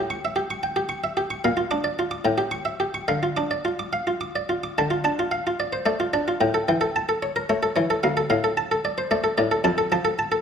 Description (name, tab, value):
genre	classical, baroque-style suite movement for harpsichord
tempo	74 BPM (dotted quarters)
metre	6/8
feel	rubato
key	D minor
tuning	A4 = 442 Hz
part	buff-stop harpsichord	solo	0.0-10.4 s	D2 to D6	-21 LUFS	equal	none
room	wet recital hall reverb, RT60 1.3 s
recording	none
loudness	-21 LUFS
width	side -7 dB against mid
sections	0.0-4.8 A section; 4.8-10.4 B section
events	none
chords	0.0 A7 (rootless); 1.4 Bb; 2.3 A7; 3.1 Dm; 6.4 A7; 8.0 Dm; 9.6 Dm/F (rootless)